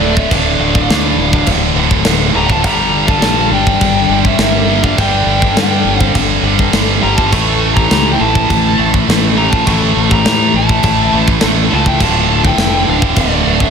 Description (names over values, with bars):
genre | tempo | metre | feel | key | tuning
heavy metal | 103 BPM | 4/4 | straight | D harmonic minor | A4 = 440 Hz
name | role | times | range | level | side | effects
high-gain lead guitar | melody | 0.0-13.7 s | D5 to C#6 | -17 LUFS | left 1 dB | distortion, tape echo
high-gain lead guitar | second line | 0.0-13.7 s | A3 to A4 | -22 LUFS | right 4 dB | distortion, slapback echo, tape echo
heavy high-gain guitar | riff | 0.0-13.7 s | D2 to A3 | -16 LUFS | right 13 dB | distortion, slapback echo
high-gain distorted guitar | riff | 0.0-13.7 s | D2 to A3 | -18 LUFS | left 11 dB | distortion, slapback echo
growling fingered electric bass | bass | 0.0-13.7 s | D1 to A2 | -17 LUFS | equal | overdrive
tight metal drum kit | drums | 0.2-13.7 s | crash cymbal, kick drum, snare drum | -16 LUFS | equal | none
room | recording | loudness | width
moderate concert hall reverb, RT60 1.8 s, small room ambience | big arena sound | -10 LUFS | side -6 dB against mid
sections
0.0-13.7 A section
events
none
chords
0.0 Dm; 2.6 Gm; 7.3 A5; 12.0 Dm